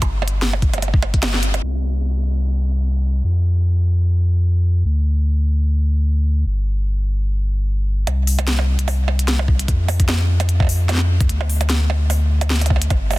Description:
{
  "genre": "IDM",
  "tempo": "149 BPM",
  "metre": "4/4",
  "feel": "swing 56% on 16ths",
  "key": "unclear",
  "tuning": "A4 = 441 Hz",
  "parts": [
    { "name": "warm sub bass", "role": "bass", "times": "0.0-13.2 s", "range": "G1 to F2", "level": "-17 LUFS", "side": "equal", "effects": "none" },
    { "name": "electronic kick drum", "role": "drums", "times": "0.0-1.2, 9.5-13.0 s", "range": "none", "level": "-17 LUFS", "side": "equal", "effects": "none" },
    { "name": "glitchy drum kit", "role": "drums", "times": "0.0-1.6, 8.1-13.2 s", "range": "hi-hat, percussion blips, snare drum", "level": "-23 LUFS", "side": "right 2 dB", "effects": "low-pass filter on hats, low-pass filter on perc, low-pass filter on snare, low-pass filter on room, tape echo" }
  ],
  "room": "little or no reverb",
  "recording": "dense, heavily limited modern master, low-pass filter",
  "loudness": "-16 LUFS",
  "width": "side -19 dB against mid",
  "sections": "0.0-1.6 A section; 1.6-8.1 B section; 8.1-13.2 C section",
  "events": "kick drops out 1.2-1.6; band accent 1.2; filter sweep 1.6-8.1",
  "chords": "none"
}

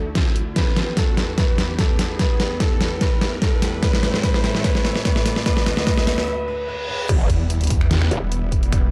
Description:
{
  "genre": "heavy wobble dubstep",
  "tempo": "147 BPM",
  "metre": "4/4",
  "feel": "half-time",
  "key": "E minor",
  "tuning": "A4 = 437 Hz",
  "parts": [
    { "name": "clear concert grand piano", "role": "melody", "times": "0.0-7.1 s", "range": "A4 to D5", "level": "-30 LUFS", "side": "equal", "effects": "none" },
    { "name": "lush unison pad", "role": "sustained chords", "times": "0.0-8.9 s", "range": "D2 to E5", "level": "-32 LUFS", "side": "equal", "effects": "chorus, sidechain pumping" },
    { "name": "riser, reverse cymbal and impact", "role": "sound effects", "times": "0.0-8.7 s", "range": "none", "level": "-34 LUFS", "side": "equal", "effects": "none" },
    { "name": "dubstep drum kit", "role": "drums", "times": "0.2-8.8 s", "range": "crash cymbal, finger snaps, hi-hat, snare drum", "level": "-25 LUFS", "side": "equal", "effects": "none" },
    { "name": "electronic kick drum", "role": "drums", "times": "0.2-8.8 s", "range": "none", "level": "-23 LUFS", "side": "equal", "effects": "none" },
    { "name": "growl bass", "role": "bass", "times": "7.1-8.2 s", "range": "E1", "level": "-25 LUFS", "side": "equal", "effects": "chorus, overdrive" },
    { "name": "snarling distorted saw bass", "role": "bass", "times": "7.3-8.9 s", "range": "E1 to E2", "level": "-22 LUFS", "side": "equal", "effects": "overdrive" }
  ],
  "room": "light reverb, digital ambience",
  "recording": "dark, warm production",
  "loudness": "-20 LUFS",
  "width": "mono",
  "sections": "0.0-7.1 A section; 7.1-8.9 B section",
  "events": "build-up 0.0-7.1; drum fill 0.0-6.3; riser 0.0-6.3; filter sweep on analog synth pad 0.0-7.1; break 6.3-7.1; reverse cymbal 6.3-7.1; drop 7.1-8.9; impact 7.1-8.7",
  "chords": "0.0 D; 0.6 Em; 3.8 Am; 5.5 D; 7.1 Em"
}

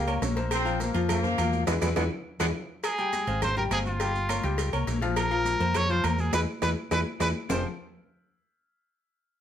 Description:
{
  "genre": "latin, salsa",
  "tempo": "206 BPM",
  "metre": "4/4",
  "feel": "straight",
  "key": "F harmonic minor",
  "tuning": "A4 = 441 Hz",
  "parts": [
    { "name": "bright trombone section", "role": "melody", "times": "0.0-2.5 s", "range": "E3 to C4", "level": "-30 LUFS", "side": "left 1 dB", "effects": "none" },
    { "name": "clear upright piano", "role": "accompaniment", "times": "0.0-7.6 s", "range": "F3 to G5", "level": "-32 LUFS", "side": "left 5 dB", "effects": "none" },
    { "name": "hollow-body short-scale fingered electric bass", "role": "bass", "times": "0.0-7.6 s", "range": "F1 to F2", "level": "-29 LUFS", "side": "right 1 dB", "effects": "none" },
    { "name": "agogo bells and timbales", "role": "percussion", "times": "0.1-7.6 s", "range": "none", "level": "-36 LUFS", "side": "right 8 dB", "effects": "none" },
    { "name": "claves", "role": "percussion", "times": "0.1-7.6 s", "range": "none", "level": "-42 LUFS", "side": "right 2 dB", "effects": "none" },
    { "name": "congas", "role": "percussion", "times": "0.1-7.6 s", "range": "none", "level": "-37 LUFS", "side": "left 1 dB", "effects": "none" },
    { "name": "maracas", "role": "percussion", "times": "0.1-7.6 s", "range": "none", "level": "-42 LUFS", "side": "right 7 dB", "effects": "none" },
    { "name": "cowbell and bongos", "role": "percussion", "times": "0.2-7.6 s", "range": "none", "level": "-37 LUFS", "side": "left 4 dB", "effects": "none" },
    { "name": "clear trumpet", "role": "melody", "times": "2.8-7.6 s", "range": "F4 to Db5", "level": "-29 LUFS", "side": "right 1 dB", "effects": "none" }
  ],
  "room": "moderate studio reverb, RT60 0.8 s",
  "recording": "none",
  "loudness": "-25 LUFS",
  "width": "side -9 dB against mid",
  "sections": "0.0-2.8 A section; 2.8-7.5 B section; 7.5-8.7 C section",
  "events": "drum fill 1.7-2.8, 6.3-7.5; band accent 1.7-2.8, 6.3-7.5",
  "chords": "0.0 Gdim; 0.5 Bbsus2; 1.7 E; 2.8 Fmadd9; 4.0 Gm7b5; 5.2 Bbsus2; 6.3 E; 7.5 Fmadd9"
}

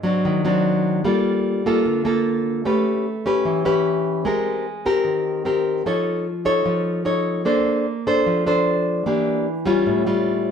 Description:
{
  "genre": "bossa nova",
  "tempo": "150 BPM",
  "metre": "4/4",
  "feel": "straight",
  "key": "unclear",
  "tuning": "A4 = 439 Hz",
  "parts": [
    { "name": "nylon-string guitar", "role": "solo", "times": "0.0-10.5 s", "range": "Ab2 to C#5", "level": "-18 LUFS", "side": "left 1 dB", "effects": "none" }
  ],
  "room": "moderate stone room reverb, RT60 1.0 s",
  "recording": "band playing live in one room",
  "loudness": "-18 LUFS",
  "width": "side -7 dB against mid",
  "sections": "0.0-10.5 A section",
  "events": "none",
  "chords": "0.0 Ab7#11; 1.0 Gm9; 2.7 A9; 4.3 Abmaj9; 5.9 Faug7; 7.5 Bbmaj9; 9.1 Em7b5; 9.9 Aaug7"
}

